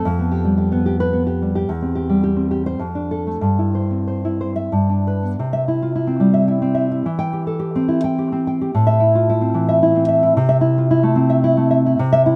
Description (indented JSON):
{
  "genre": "romantic piece for solo classical guitar",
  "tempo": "91-114 BPM",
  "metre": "3/4",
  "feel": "rubato",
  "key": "C major",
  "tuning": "A4 = 440 Hz",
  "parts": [
    { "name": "nylon-string guitar", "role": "solo", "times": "0.0-12.4 s", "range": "E2 to G5", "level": "-18 LUFS", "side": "equal", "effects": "none" }
  ],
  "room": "light reverb",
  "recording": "none",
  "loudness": "-18 LUFS",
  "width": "mono",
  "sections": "0.0-5.4 A section; 5.4-12.4 B section",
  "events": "none",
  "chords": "0.1 G7/F; 1.7 C/E; 2.8 Dm/F; 3.4 C/G; 4.7 G; 5.4 C; 7.1 C/E; 8.7 Am; 10.4 Am/C"
}